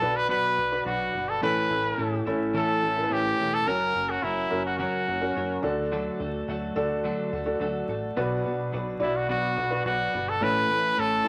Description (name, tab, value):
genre	piano-driven pop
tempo	107 BPM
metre	4/4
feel	straight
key	B minor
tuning	A4 = 440 Hz
part	brilliant trumpet	melody	0.0-5.6, 9.0-11.3 s	E4 to B4	-28 LUFS	equal	none
part	felt-muted upright piano	accompaniment	0.0-11.3 s	A2 to D5	-32 LUFS	equal	none
part	twelve-string electric guitar	riff	0.0-11.3 s	F#2 to B4	-34 LUFS	equal	none
part	plucky analog bass	bass	0.0-11.2 s	E1 to D2	-40 LUFS	equal	none
room	moderate studio reverb, RT60 0.9 s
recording	vinyl crackle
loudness	-27 LUFS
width	mono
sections	0.0-11.3 A section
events	none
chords	0.0 Bm; 1.4 A; 3.7 F#; 5.6 D; 8.2 Bm; 10.4 A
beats	0.30 0.86 | 1.42 1.98 2.55 3.11 | 3.67 4.23 4.79 5.36 | 5.92 6.48 7.04 7.61 | 8.17 8.73 9.29 9.85 | 10.42 10.98